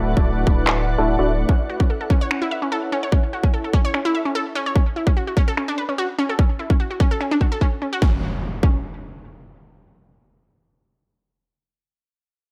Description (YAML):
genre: future bass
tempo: 147 BPM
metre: 4/4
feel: half-time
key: unclear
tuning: A4 = 440 Hz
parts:
  - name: shimmering ambient pad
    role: sustained chords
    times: 0.0-4.7 s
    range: E4 to F#5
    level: -32 LUFS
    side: equal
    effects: chorus, built-in reverb, sidechain pumping
  - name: supersaw stab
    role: riff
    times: 0.0-1.5 s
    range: A3 to D5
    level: -25 LUFS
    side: equal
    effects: sidechain pumping, low-pass filter, tape echo
  - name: saturated sub bass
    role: bass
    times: 0.0-1.4 s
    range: D1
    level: -24 LUFS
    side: equal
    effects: sidechain pumping
  - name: electronic kick drum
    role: drums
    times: 0.2-8.8 s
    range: none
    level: -20 LUFS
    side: equal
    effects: none
  - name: electronic finger snaps and handclaps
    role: drums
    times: 0.7-7.3 s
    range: none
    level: -25 LUFS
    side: equal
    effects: low-pass filter on hats, low-pass filter on cymbals, low-pass filter on snare
  - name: unison pluck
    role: arpeggios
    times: 1.5-8.8 s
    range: C#4 to E5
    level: -26 LUFS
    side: equal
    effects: sidechain pumping, tape echo
  - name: impact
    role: sound effects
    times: 8.0-11.5 s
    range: none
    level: -31 LUFS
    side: equal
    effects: none
room: light reverb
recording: none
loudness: -20 LUFS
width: mono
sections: 0.0-8.0 A section; 8.0-11.3 B section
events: filter sweep on supersaw synth 0.0-1.5; filter sweep on ambient pad 0.0-4.8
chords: 0.0 D69; 1.5 F#m7; 4.8 B9sus4 (rootless); 8.0 N.C.